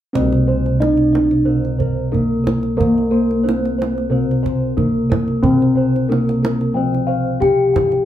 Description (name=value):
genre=Javanese gamelan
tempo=91 BPM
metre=4/4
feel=straight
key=C slendro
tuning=A4 = 440 Hz
part: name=gamelan-type bronze metallophone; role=melody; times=0.1-8.1 s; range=Bb3-25c to G4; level=-18 LUFS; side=left 2 dB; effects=none
part: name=gamelan-type bronze metallophone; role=accompaniment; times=0.1-8.1 s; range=C3 to Bb3-25c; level=-21 LUFS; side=right 2 dB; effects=none
part: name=gamelan-type bronze metallophone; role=arpeggios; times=0.1-8.0 s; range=Bb4-25c to G5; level=-27 LUFS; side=right 6 dB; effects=none
part: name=gamelan-type bossed gongs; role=bass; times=0.1-8.1 s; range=C2 to Bb4-25c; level=-21 LUFS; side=left 1 dB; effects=none
part: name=gamelan-type bossed gongs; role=arpeggios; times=0.2-7.8 s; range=Bb4-25c to G5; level=-28 LUFS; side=left 5 dB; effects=none
part: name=kendang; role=percussion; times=0.2-8.0 s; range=none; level=-23 LUFS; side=right 3 dB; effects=none
room=wet large studio reverb, RT60 0.8 s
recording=band playing live in one room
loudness=-14 LUFS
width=side -11 dB against mid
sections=0.2-8.1 A section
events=none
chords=none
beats=| 0.15 0.81 1.47 2.13 | 2.79 3.45 4.11 4.77 | 5.43 6.09 6.75 7.41